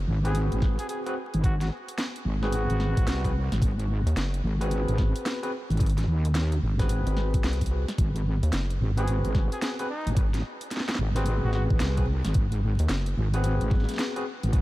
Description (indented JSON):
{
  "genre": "glitch hop",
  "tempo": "110 BPM",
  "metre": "4/4",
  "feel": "swing 63% on 16ths",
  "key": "unclear",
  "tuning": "A4 = 440 Hz",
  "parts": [
    { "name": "rubbery square bass", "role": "bass", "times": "0.0-0.1, 4.1-8.8, 12.8-13.2 s", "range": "F#1 to D#2", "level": "-26 LUFS", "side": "equal", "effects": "none" },
    { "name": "wobble bass", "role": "bass", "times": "0.1-14.6 s", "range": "G#1 to D#2", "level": "-25 LUFS", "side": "equal", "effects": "chorus, overdrive" },
    { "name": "growling trumpet", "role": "melody", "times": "0.2-3.3, 9.0-11.6 s", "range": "B#3 to G#4", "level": "-40 LUFS", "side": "equal", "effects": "vintage 12-bit sampler grit, tape echo" },
    { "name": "overdriven tine electric piano", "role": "stabs", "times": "0.2-14.2 s", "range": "B#3 to B4", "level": "-34 LUFS", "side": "left 1 dB", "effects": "lush chorus, sidechain pumping, tape echo" },
    { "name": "drum and bass drum kit", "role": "drums", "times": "0.2-14.6 s", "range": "hi-hat, snare drum", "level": "-35 LUFS", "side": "equal", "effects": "overdrive" },
    { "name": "electronic kick drum", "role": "drums", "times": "0.6-14.6 s", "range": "none", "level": "-25 LUFS", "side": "equal", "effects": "overdrive" }
  ],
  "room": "little or no reverb",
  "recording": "vinyl crackle",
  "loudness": "-24 LUFS",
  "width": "side -17 dB against mid",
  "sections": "0.0-14.6 A section",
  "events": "none",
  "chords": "0.0 G#7#9"
}